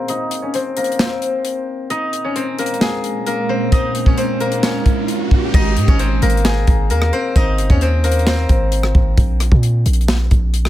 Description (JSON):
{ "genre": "hip hop, trap", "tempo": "132 BPM", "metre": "4/4", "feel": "half-time", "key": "Ab major", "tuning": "A4 = 445 Hz", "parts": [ { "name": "steel-string zither", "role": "melody", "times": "0.0-10.7 s", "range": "Bb3 to Ab5", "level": "-20 LUFS", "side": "left 3 dB", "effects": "low-pass filter, ping-pong delay" }, { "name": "tight funk drum kit", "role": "drums", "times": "0.1-10.7 s", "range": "crash cymbal, hi-hat, kick drum, rim click, snare drum", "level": "-16 LUFS", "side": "equal", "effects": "none" }, { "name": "ethereal airy pad", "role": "sustained chords", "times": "2.5-5.5 s", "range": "Bb2 to Db4", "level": "-25 LUFS", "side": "right 4 dB", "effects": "ensemble chorus, built-in reverb, phaser, low-pass filter" }, { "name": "riser", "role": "sound effects", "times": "3.2-5.5 s", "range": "none", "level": "-27 LUFS", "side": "right 2 dB", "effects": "none" }, { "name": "hard-hitting 808-style bass", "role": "bass", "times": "5.5-10.7 s", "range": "G1 to Bb2", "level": "-16 LUFS", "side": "equal", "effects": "none" } ], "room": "studio reverb", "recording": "none", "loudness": "-14 LUFS", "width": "side -14 dB against mid", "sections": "0.0-5.5 A section; 5.5-10.7 B section", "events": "filter sweep 0.0-5.5; riser 3.2-5.5", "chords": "0.0 Bbm7; 5.5 Ab; 9.2 N.C." }